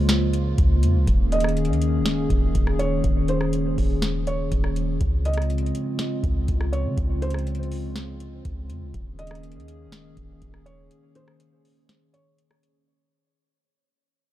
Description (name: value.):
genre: hip hop, atmospheric cloud-rap.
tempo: 122 BPM.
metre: 4/4.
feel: half-time.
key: unclear.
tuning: A4 = 441 Hz.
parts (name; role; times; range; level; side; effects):
dark analog pad; sustained chords; 0.0-12.8 s; Db3 to Ab4; -26 LUFS; left 1 dB; chorus, sidechain pumping.
soft 808-style bass; bass; 0.0-10.9 s; Eb1 to Db3; -25 LUFS; equal; none.
booming analog drum machine; drums; 0.1-12.7 s; hi-hat, kick drum, rim click, snare drum; -25 LUFS; equal; none.
felt-muted upright piano; melody; 1.3-12.4 s; C5 to Eb5; -32 LUFS; right 3 dB; low-pass filter, tape echo.
room: little or no reverb.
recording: dark, warm production.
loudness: -21 LUFS.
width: side -14 dB against mid.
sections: 0.0-12.9 A section.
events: fade-out 0.0-12.9; break 10.9-12.9.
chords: 0.0 Db; 1.1 Eb7sus4; 5.0 Dbmaj7; 8.9 Eb7sus4.